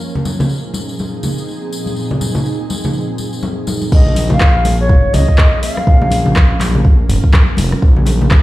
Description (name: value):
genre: afro house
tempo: 123 BPM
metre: 4/4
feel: swing 60% on 16ths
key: Bb minor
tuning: A4 = 439 Hz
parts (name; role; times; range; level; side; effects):
- ethereal airy pad; sustained chords; 0.0-8.4 s; Bb2 to Bb4; -23 LUFS; right 1 dB; ensemble chorus, built-in reverb, sidechain pumping
- tambourine; percussion; 0.0-3.9 s; none; -30 LUFS; left 3 dB; none
- congas; percussion; 0.2-8.3 s; none; -20 LUFS; left 1 dB; none
- bright reedy bansuri; melody; 3.9-6.6 s; Db5 to F5; -20 LUFS; equal; dub echo
- smooth gliding synth bass; bass; 3.9-8.4 s; F1 to Db2; -15 LUFS; equal; sidechain pumping
- afro-pop drum kit; drums; 3.9-8.4 s; crash cymbal, handclaps, hi-hat, rim click, toms; -20 LUFS; equal; small room ambience
- electronic kick drum; drums; 3.9-8.4 s; none; -10 LUFS; equal; small room ambience
room: light reverb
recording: played on a big sound system in a bare room, stone room reverb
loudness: -11 LUFS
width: side -17 dB against mid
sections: 0.0-3.9 A section; 3.9-8.4 B section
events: drop 3.9-8.4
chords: 0.0 Fm7/Bb; 3.9 Bbm7; 7.8 Fm7